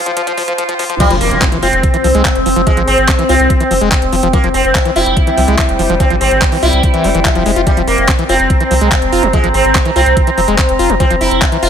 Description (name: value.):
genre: psychedelic trance.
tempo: 144 BPM.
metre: 4/4.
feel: straight.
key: F harmonic minor.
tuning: A4 = 439 Hz.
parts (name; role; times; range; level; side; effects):
overtone-sweeping drone; sustained chords; 0.0-11.7 s; F3 to F5; -20 LUFS; left 1 dB; chorus, built-in reverb, phaser, vintage 12-bit sampler grit, sidechain pumping.
warbly tape-like pad; texture; 0.0-11.7 s; C4 to Bb5; -18 LUFS; right 1 dB; chorus, built-in reverb, sidechain pumping.
overdriven acid bass; riff; 0.1-11.7 s; E3 to F4; -18 LUFS; moving between left 8 dB and right 8 dB; auto-pan, sidechain pumping, tape echo.
electronic kick drum; drums; 0.1-11.5 s; none; -14 LUFS; equal; studio reverb.
garage drum kit; drums; 0.1-11.7 s; crash cymbal, handclaps, hi-hat; -19 LUFS; equal; studio reverb.
sitar; melody; 1.0-11.7 s; G3 to F4; -15 LUFS; equal; phaser, sidechain pumping, digital delay.
impact; sound effects; 1.0-2.7 s; none; -23 LUFS; equal; none.
round analog bass; bass; 1.1-11.7 s; F1 to C2; -17 LUFS; equal; none.
room: light reverb, digital ambience.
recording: high-pass filter.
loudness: -9 LUFS.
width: side -8 dB against mid.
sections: 0.0-1.0 A section; 1.0-11.7 B section.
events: build-up 0.0-1.0; drum fill 0.0-1.0; drop 1.0-11.7; impact 1.0-2.7.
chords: 0.0 F5.